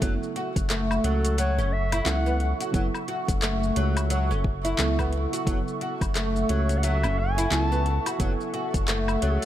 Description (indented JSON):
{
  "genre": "organic downtempo",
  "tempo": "88 BPM",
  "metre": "4/4",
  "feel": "swing 60% on 16ths",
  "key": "F# minor",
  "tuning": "A4 = 440 Hz",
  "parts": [
    { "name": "deep mellow chord stab", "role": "accompaniment", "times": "0.0-9.5 s", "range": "C#3 to A4", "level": "-33 LUFS", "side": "right 4 dB", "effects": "chorus, cassette tape, sidechain pumping, digital delay" },
    { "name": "airy breathy pad", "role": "sustained chords", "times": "0.0-9.5 s", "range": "A4 to C#6", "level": "-34 LUFS", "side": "right 2 dB", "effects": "chorus, sidechain pumping" },
    { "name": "oud", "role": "arpeggios", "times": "0.0-9.5 s", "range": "F#3 to F#4", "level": "-29 LUFS", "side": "equal", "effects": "digital delay" },
    { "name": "round analog bass", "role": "bass", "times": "0.0-9.4 s", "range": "F#1 to C#2", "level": "-26 LUFS", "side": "equal", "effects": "sidechain pumping" },
    { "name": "deep house drum kit", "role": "drums", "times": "0.0-9.5 s", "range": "handclaps, hi-hat, shaker, woodblock", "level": "-31 LUFS", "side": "left 2 dB", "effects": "overdrive" },
    { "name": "electronic kick drum", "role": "drums", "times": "0.0-8.9 s", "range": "none", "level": "-28 LUFS", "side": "equal", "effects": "overdrive" },
    { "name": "mellow clarinet", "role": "melody", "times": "1.0-9.5 s", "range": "G#4 to A5", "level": "-32 LUFS", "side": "left 1 dB", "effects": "tape echo" }
  ],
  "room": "light reverb, digital ambience",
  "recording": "none",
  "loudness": "-23 LUFS",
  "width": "side -12 dB against mid",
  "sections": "0.0-9.5 A section",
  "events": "none",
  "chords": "0.0 F#m7",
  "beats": "| 0.02 0.70 1.38 2.06 | 2.74 3.42 4.11 4.79 | 5.47 6.15 6.83 7.52 | 8.20 8.88"
}